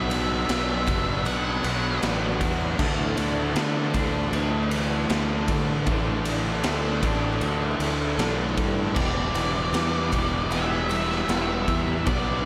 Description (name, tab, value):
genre	rock, shoegaze and dream pop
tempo	78 BPM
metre	4/4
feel	straight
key	D major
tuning	A4 = 440 Hz
part	octave-fuzz lead guitar	melody	0.0-2.0, 8.9-12.5 s	D5 to F#5	-32 LUFS	equal	distortion, delay
part	picked twelve-string acoustic guitar	arpeggios	0.0-12.5 s	E3 to D4	-38 LUFS	equal	none
part	raw garage guitar	riff	0.0-12.5 s	B2 to E4	-34 LUFS	equal	none
part	raw garage guitar	riff	0.0-12.5 s	B2 to E4	-34 LUFS	equal	none
part	tight distorted guitar	riff	0.0-12.5 s	E2 to D4	-34 LUFS	equal	distortion
part	fuzz fingered electric bass	bass	0.0-12.5 s	E1 to D3	-30 LUFS	equal	overdrive
part	raw garage drum kit	drums	0.1-12.3 s	crash cymbal, kick drum, ride cymbal, snare drum	-30 LUFS	equal	none
room	wet lush hall reverb, RT60 2.7 s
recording	dreamy mix soaked in reverb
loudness	-25 LUFS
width	mono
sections	0.0-12.5 A section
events	none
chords	0.0 Bm; 2.8 Dsus2; 9.0 Em7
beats	0.49 1.26 2.03 | 2.79 3.56 4.33 5.10 | 5.87 6.65 7.42 8.19 | 8.97 9.74 10.52 11.29 | 12.07